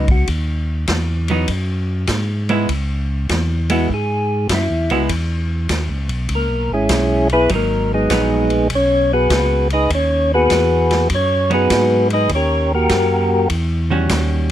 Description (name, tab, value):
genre	soul jazz organ trio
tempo	100 BPM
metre	4/4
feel	swing 68% on 8ths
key	G# minor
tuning	A4 = 440 Hz
part	percussive tonewheel organ	melody	0.0-13.5 s	G#3 to D#5	-16 LUFS	equal	slow rotary speaker
part	hollow-body jazz guitar	accompaniment	0.0-14.5 s	D#3 to F#4	-20 LUFS	right 2 dB	none
part	tonewheel organ	bass	0.0-14.5 s	G#1 to G#2	-19 LUFS	equal	overdrive, slow rotary speaker
part	vintage drum kit	drums	0.1-14.5 s	hi-hat, kick drum, ride cymbal, snare drum	-24 LUFS	equal	none
room	little or no reverb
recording	close, detailed microphones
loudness	-15 LUFS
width	side -12 dB against mid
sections	0.0-14.5 A section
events	tonewheel organ solo 0.0-14.5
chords	0.0 G#m7; 12.3 D#7#9